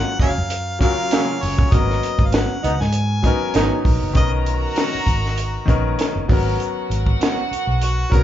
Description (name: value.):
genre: lush 1970s-style soul.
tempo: 98 BPM.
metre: 4/4.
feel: swing 54% on 16ths.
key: G# dorian.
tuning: A4 = 440 Hz.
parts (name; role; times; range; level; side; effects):
clear harmonica; melody; 0.0-8.2 s; F#4 to G#5; -26 LUFS; left 1 dB; none.
bright grand piano; accompaniment; 0.0-8.2 s; D#3 to A#4; -25 LUFS; left 5 dB; none.
electric guitar through a small old amp; riff; 0.0-7.4 s; F#3 to A#4; -29 LUFS; right 2 dB; none.
mellow horn section; stabs; 0.2-4.1 s; C#3 to D#4; -24 LUFS; right 3 dB; none.
vintage muted fingered electric bass; bass; 0.2-8.2 s; F#1 to G#2; -22 LUFS; equal; none.
compact cocktail drum kit; drums; 0.2-8.2 s; hi-hat, kick drum, snare drum; -19 LUFS; equal; none.
warm studio string section; second line; 4.2-8.2 s; F#4 to A#5; -27 LUFS; right 2 dB; none.
room: moderate large studio reverb, RT60 0.8 s.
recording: band playing live in one room, nothing above 7.5 kHz.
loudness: -17 LUFS.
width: side -11 dB against mid.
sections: 0.0-4.2 A section; 4.2-8.2 B section.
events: harmonica solo 4.2-8.2.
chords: 0.0 F#maj7; 1.7 G#m11.